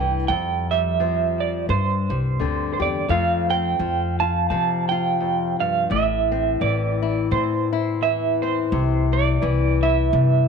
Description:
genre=acoustic folk duo or small band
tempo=85 BPM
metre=4/4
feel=swing 57% on 8ths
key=unclear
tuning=A4 = 436 Hz
part: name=electric guitar through a small old amp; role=melody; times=0.0-10.5 s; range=C5 to A5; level=-23 LUFS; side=right 11 dB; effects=tremolo
part: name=nylon-string guitar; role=accompaniment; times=0.0-10.5 s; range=E2 to G4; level=-25 LUFS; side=left 11 dB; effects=none
part: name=upright bass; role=bass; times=0.0-10.5 s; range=A1 to F3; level=-23 LUFS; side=left 1 dB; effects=none
room=light reverb, studio ambience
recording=1960s-style stereo with parts hard left and right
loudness=-19 LUFS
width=side -6 dB against mid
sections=0.0-3.1 A section; 3.1-10.5 B section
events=none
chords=0.3 Fsus2; 1.7 Gsus4; 3.1 F; 5.9 Am; 8.7 C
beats=| 0.29 0.99 1.69 2.40 | 3.10 3.80 4.50 5.20 | 5.91 6.61 7.31 8.02 | 8.72 9.43 10.13

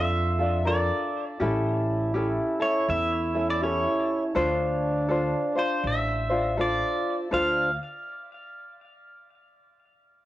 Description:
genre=Hawaiian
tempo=81 BPM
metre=4/4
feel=swing 63% on 8ths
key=D minor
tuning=A4 = 440 Hz
part: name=pedal steel guitar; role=melody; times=0.0-7.8 s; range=C5 to F5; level=-29 LUFS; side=equal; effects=cassette tape, tape echo
part: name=trombone with plunger mute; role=second line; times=0.0-7.7 s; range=D4 to F4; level=-31 LUFS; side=right 3 dB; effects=none
part: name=tenor ukulele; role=accompaniment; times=0.0-7.7 s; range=C#4 to C5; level=-27 LUFS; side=left 2 dB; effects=none
part: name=upright bass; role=bass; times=0.0-7.8 s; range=A1 to F2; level=-30 LUFS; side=equal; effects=tube saturation
room=moderate studio reverb, RT60 0.5 s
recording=home recording on cassette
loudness=-23 LUFS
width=side -15 dB against mid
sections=0.0-7.3 A section; 7.3-10.3 B section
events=none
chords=0.0 Bbmaj7; 1.4 A7; 4.4 Dm7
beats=0.67 | 1.41 2.15 2.88 3.62 | 4.36 5.10 5.84 6.58 | 7.32

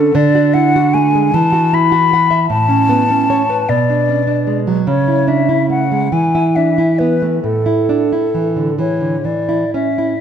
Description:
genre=romantic duo for flute and classical guitar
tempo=40-52 BPM (dotted quarters)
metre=6/8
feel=rubato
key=A major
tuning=A4 = 440 Hz
part: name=mellow hollow silver concert flute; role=melody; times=0.0-10.2 s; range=A4 to B5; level=-16 LUFS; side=left 4 dB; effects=tape echo
part: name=nylon-string guitar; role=accompaniment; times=0.0-10.2 s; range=A2 to F#5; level=-14 LUFS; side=right 2 dB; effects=none
room=moderate recital hall reverb, RT60 1.3 s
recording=none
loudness=-12 LUFS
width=side -8 dB against mid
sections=0.0-10.2 A section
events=none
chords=0.1 Dadd9; 1.3 Esus2; 2.5 A; 3.7 G#dim/B; 4.9 A/C#; 6.1 E5; 7.4 A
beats=| 0.15 1.34 | 2.50 3.69 | 4.87 6.12 | 7.43 8.78

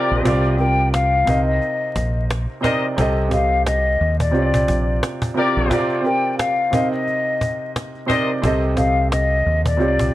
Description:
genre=hip hop, boom-bap hip-hop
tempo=88 BPM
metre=4/4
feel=swing 57% on 16ths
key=C dorian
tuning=A4 = 442 Hz
part: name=dark grand piano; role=accompaniment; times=0.0-10.1 s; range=C3 to Eb5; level=-22 LUFS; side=right 2 dB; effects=high-pass filter, low-pass filter
part: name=warm horn section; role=stabs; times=0.0-8.3 s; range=G4 to Eb5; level=-24 LUFS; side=left 4 dB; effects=high-pass filter, low-pass filter, tape echo
part: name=deep dub fingered electric bass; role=bass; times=0.1-10.1 s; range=Bb1 to Eb2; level=-20 LUFS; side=equal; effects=none
part: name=cajon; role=drums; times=0.3-10.1 s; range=none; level=-25 LUFS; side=equal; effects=none
part: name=hollow concert flute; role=melody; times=0.6-10.1 s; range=D5 to G5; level=-20 LUFS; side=left 3 dB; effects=high-pass filter, low-pass filter, tape echo
room=small room ambience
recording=vinyl crackle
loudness=-16 LUFS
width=side -15 dB against mid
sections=0.0-10.1 A section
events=none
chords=0.3 C9sus4; 1.3 Cm7; 3.0 Cm6; 4.3 Bb6; 5.7 C9sus4; 6.7 Cm7; 8.4 Cm6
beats=| 0.25 0.94 1.62 2.30 | 2.98 3.66 4.34 5.03 | 5.71 6.39 7.07 7.75 | 8.44 9.12 9.80

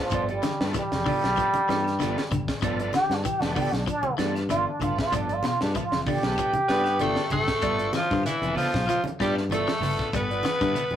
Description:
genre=afrobeat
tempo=96 BPM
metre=4/4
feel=swing 54% on 16ths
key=G mixolydian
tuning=A4 = 440 Hz
part: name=trombone with plunger mute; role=melody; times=0.0-7.6 s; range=F3 to G4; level=-26 LUFS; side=right 1 dB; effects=none
part: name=overdriven tonewheel organ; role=accompaniment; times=0.0-10.8 s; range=A3 to G4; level=-36 LUFS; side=left 1 dB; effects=slow rotary speaker
part: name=electric guitar at the edge of break-up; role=arpeggios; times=0.1-10.8 s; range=B2 to G3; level=-33 LUFS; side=left 5 dB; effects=none
part: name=clean electric guitar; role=stabs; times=0.1-11.0 s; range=B3 to D5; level=-32 LUFS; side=right 5 dB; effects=none
part: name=fingered electric bass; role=bass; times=0.1-11.0 s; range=F1 to G2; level=-31 LUFS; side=left 1 dB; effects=none
part: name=tight funk drum kit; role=drums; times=0.1-10.9 s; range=hi-hat, kick drum, snare drum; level=-31 LUFS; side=equal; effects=none
part: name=claves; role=percussion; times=0.1-10.9 s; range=none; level=-48 LUFS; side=left 6 dB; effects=none
part: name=congas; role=percussion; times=0.1-11.0 s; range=none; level=-35 LUFS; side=right 1 dB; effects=none
part: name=shekere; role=percussion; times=0.1-10.9 s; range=none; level=-40 LUFS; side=right 4 dB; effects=none
part: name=raspy alto saxophone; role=melody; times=6.7-11.0 s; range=E4 to B4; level=-28 LUFS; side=right 1 dB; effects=none
part: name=mellow cor anglais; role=second line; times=6.7-11.0 s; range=E3 to B3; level=-31 LUFS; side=left 4 dB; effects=none
part: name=raspy tenor saxophone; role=second line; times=6.7-11.0 s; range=E3 to B3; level=-34 LUFS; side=right 2 dB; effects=none
room=moderate small room reverb, RT60 0.6 s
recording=rough rehearsal-room recording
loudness=-23 LUFS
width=side -10 dB against mid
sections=0.0-7.6 A section; 7.6-11.0 B section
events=trombone solo 0.0-7.6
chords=0.0 G9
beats=| 0.11 0.74 1.37 2.00 | 2.62 3.25 3.87 4.50 | 5.13 5.75 6.38 7.00 | 7.63 8.26 8.88 9.51 | 10.13 10.76

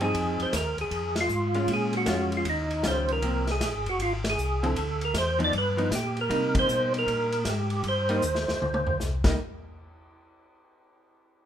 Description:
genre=soul jazz organ trio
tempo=156 BPM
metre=4/4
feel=swing 65% on 8ths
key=C minor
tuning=A4 = 440 Hz
part: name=percussive tonewheel organ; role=melody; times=0.0-9.0 s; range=Eb4 to D5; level=-27 LUFS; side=right 1 dB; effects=slow rotary speaker, chorus vibrato
part: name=vintage hollow-body jazz guitar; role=accompaniment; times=0.0-9.4 s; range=D3 to Ab4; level=-31 LUFS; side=equal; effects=none
part: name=mellow tonewheel organ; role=bass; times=0.0-9.4 s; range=F1 to C3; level=-30 LUFS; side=left 1 dB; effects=chorus vibrato, slow rotary speaker
part: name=vintage drum kit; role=drums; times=0.0-9.3 s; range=crash cymbal, hi-hat, kick drum, ride cymbal, snare drum, toms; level=-32 LUFS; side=equal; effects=none
room=light reverb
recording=minimal, uncompressed stereo recording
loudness=-24 LUFS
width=side -9 dB against mid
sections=0.0-9.4 A section; 9.4-10.9 B section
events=band accent 1.1, 4.2, 6.5; drum fill 8.2-9.0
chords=0.1 Fm7; 1.7 Bbm7; 2.5 Eb9; 3.2 Ab69; 4.8 Dmadd9; 5.5 G7alt; 6.3 Cm7; 9.4 N.C.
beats=| 0.15 0.53 0.92 1.30 | 1.69 2.07 2.46 2.84 | 3.23 3.61 4.00 4.38 | 4.77 5.15 5.54 5.92 | 6.31 6.69 7.08 7.46 | 7.84 8.23 8.61 9.00

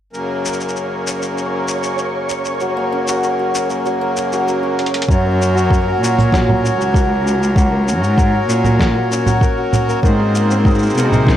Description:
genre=folktronica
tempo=97 BPM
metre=4/4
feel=straight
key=Gb lydian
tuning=A4 = 439 Hz
part: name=hand-pumped harmonium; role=sustained chords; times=0.1-11.4 s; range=Gb2 to Bb4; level=-21 LUFS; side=left 1 dB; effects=none
part: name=lo-fi sampler-style drum kit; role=drums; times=0.1-11.4 s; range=congas, hi-hat, shaker, snare drum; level=-20 LUFS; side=right 1 dB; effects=none
part: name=flickering grainy texture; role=texture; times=0.4-5.1 s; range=Db5 to Db6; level=-27 LUFS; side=right 2 dB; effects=built-in reverb
part: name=hammered dulcimer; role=arpeggios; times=2.6-11.4 s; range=Eb3 to Bb4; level=-18 LUFS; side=equal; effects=low-pass filter, digital delay
part: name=dark cello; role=bass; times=5.1-11.4 s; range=Db2 to C3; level=-17 LUFS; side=equal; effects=none
part: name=electronic kick drum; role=drums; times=5.1-11.4 s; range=none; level=-15 LUFS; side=equal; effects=none
room=light reverb, small room ambience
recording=none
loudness=-14 LUFS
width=side -11 dB against mid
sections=0.1-5.1 A section; 5.1-11.4 B section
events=drum fill 4.8-5.1; filter sweep on hammered dulcimer 5.1-11.4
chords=0.1 Gb; 10.0 Abadd9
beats=| 0.14 0.76 1.37 1.99 | 2.61 3.23 3.85 4.47 | 5.08 5.70 6.32 6.94 | 7.56 8.18 8.80 9.41 | 10.03 10.65 11.27

